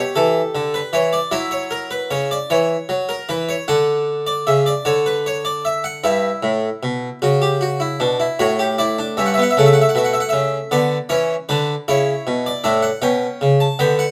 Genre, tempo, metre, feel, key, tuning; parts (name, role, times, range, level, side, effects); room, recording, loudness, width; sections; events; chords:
classical, baroque-style 3-part fugue for harpsichord; 51 BPM (dotted quarters); 12/8; straight; A4 = 440 Hz
harpsichord; solo; 0.0-14.1 s; G2 to A5; -18 LUFS; equal
moderate studio reverb, RT60 0.6 s; -19 LUFS; mono
0.0-6.0 A section; 6.0-14.1 B section
0.0 C#m7b5; 1.3 F#7; 3.7 Bm (rootless); 6.0 Em/G; 10.7 N.C.; 13.0 G/B